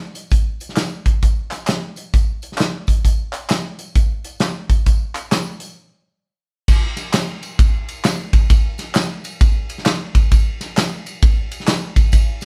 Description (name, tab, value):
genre	gospel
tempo	132 BPM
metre	4/4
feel	swing 64% on 8ths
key	none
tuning	none
part	tambourine and handclaps	percussion	0.1-12.4 s	none	-31 LUFS	equal	none
part	modern studio drum kit	drums	0.2-12.4 s	crash cymbal, hi-hat, kick drum, ride cymbal, snare drum	-18 LUFS	equal	none
room	wet studio reverb, RT60 0.7 s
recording	band playing live in one room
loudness	-18 LUFS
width	mono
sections	0.0-6.7 A section; 6.7-12.4 B section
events	break 5.8-6.7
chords	none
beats	0.32 0.78 | 1.23 1.68 2.14 2.59 | 3.05 3.50 3.96 4.41 | 4.87 5.32 5.78 6.23 | 6.69 7.14 7.59 8.05 | 8.50 8.96 9.41 9.86 | 10.31 10.77 11.22 11.67 | 12.13